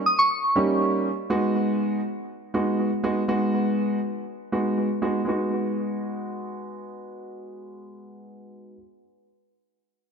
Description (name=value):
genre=pop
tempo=121 BPM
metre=4/4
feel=straight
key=G# minor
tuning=A4 = 439 Hz
part: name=soft synth bell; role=melody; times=0.0-1.0 s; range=C#6 to D#6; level=-22 LUFS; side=equal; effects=chorus, analog delay
part: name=warm grand piano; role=accompaniment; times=0.6-8.8 s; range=G3 to G4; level=-25 LUFS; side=right 1 dB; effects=low-pass filter, analog delay
room=moderate echo chamber reverb, RT60 1.3 s, small room ambience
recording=echo-heavy mix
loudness=-22 LUFS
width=side -6 dB against mid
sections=0.0-1.3 A section; 1.3-5.3 B section; 5.3-9.2 C section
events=none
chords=0.0 D#7; 1.3 G#m7